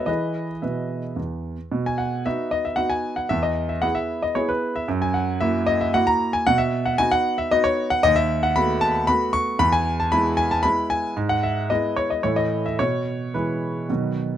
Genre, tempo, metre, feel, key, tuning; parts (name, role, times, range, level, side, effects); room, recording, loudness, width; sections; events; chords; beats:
classical-period piano sonatina; 114 BPM; 3/4; straight; B major, E major from 8.0 s; A4 = 440 Hz
clear grand piano; solo; 0.0-14.4 s; D#2 to C#6; -20 LUFS; equal
little or no reverb; close, detailed microphones; -20 LUFS; side -10 dB against mid
0.0-1.7 A section; 1.7-14.4 B section
0.1 E; 1.7 B; 3.3 E; 4.9 F#7; 6.5 B; 8.0 B7/D#; 9.6 E; 11.2 E/G#; 12.2 A5; 12.8 E/B
| 0.09 0.64 1.18 | 1.73 2.26 2.79 | 3.32 3.84 4.37 | 4.89 5.42 5.94 | 6.46 6.98 7.50 | 8.03 8.55 9.07 | 9.60 10.12 10.65 | 11.17 11.70 12.24 | 12.79 13.34 13.89